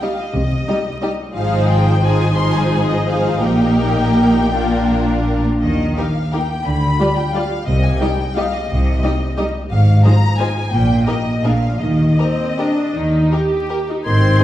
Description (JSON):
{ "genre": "classical, orchestral ballroom waltz", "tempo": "151-193 BPM", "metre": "3/4", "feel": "rubato", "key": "Eb major", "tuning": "A4 = 440 Hz", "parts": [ { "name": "rich studio violin section", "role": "melody", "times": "0.0-14.4 s", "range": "Eb5 to C6", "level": "-24 LUFS", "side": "left 3 dB", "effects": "none" }, { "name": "rich studio violin section", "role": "second line", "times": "0.0-14.4 s", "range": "F4 to Eb5", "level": "-25 LUFS", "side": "left 2 dB", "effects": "none" }, { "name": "rich studio viola section", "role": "accompaniment", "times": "0.0-14.4 s", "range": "F3 to G4", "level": "-20 LUFS", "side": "equal", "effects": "none" }, { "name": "clear studio cello section", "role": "bass", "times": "0.3-14.4 s", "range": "Ab2 to C4", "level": "-21 LUFS", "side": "equal", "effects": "none" }, { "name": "rich studio double bass section", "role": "bass", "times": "0.3-14.3 s", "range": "Ab1 to Eb2", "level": "-18 LUFS", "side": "equal", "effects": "none" }, { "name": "hollow concert flute", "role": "second line", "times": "14.0-14.4 s", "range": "Ab6", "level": "-22 LUFS", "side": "left 1 dB", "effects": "none" }, { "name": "clear clarinet", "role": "second line", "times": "14.1-14.4 s", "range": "C5", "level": "-23 LUFS", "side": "left 4 dB", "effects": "none" }, { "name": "dark bassoon", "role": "accompaniment", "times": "14.1-14.4 s", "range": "Eb3", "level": "-20 LUFS", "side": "right 1 dB", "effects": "none" }, { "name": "dark French horn section", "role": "sustained chords", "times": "14.4 s", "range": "none", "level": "barely audible", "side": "none", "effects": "none" } ], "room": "wet recital hall reverb, RT60 1.8 s", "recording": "heard from further back in the room, vinyl crackle", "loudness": "-14 LUFS", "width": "side -13 dB against mid", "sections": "0.0-14.1 A section", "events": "none", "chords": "0.0 Cm; 1.4 Fm7/Ab; 3.4 Eb/Bb; 4.5 Bb; 5.6 Eb; 6.7 G7/D; 7.7 Cm; 9.7 Fm7/Ab; 10.7 Eb/Bb; 11.4 Bb; 11.8 Eb" }